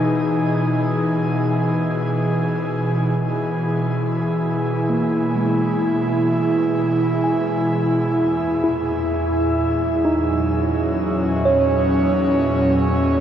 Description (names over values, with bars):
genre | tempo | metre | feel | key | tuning
ambient | 64 BPM | 4/4 | straight | E lydian | A4 = 440 Hz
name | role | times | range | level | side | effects
airy breathy pad | sustained chords | 0.0-13.2 s | E2 to G#4 | -18 LUFS | equal | chorus
tine electric piano | arpeggios | 0.0-13.2 s | G#3 to G#5 | -22 LUFS | moving between left 3 dB and right 4 dB | auto-pan, tape echo
room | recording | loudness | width
wet shimmer reverb, RT60 8.5 s | worn, warbling old tape, cassette tape, warbly pitch drift | -17 LUFS | side -9 dB against mid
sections
0.0-13.2 A section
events
fade-in on tine electric piano 0.0-13.2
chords
0.0 Emaj7; 8.2 F#add9/E